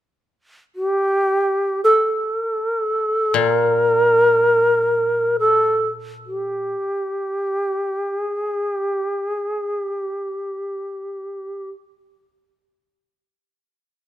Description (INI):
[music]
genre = japanese traditional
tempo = free time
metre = none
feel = none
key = G minor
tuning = A4 = 440 Hz
[part]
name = bright reedy long shakuhachi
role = melody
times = 0.8-11.7 s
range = G4 to Bb4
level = -18 LUFS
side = equal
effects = none
[part]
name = koto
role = accompaniment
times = 3.3-6.7 s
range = Bb2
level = -25 LUFS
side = left 8 dB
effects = none
[sound]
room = light reverb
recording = close, detailed microphones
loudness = -18 LUFS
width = side -13 dB against mid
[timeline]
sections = 0.0-14.1 A section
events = none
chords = none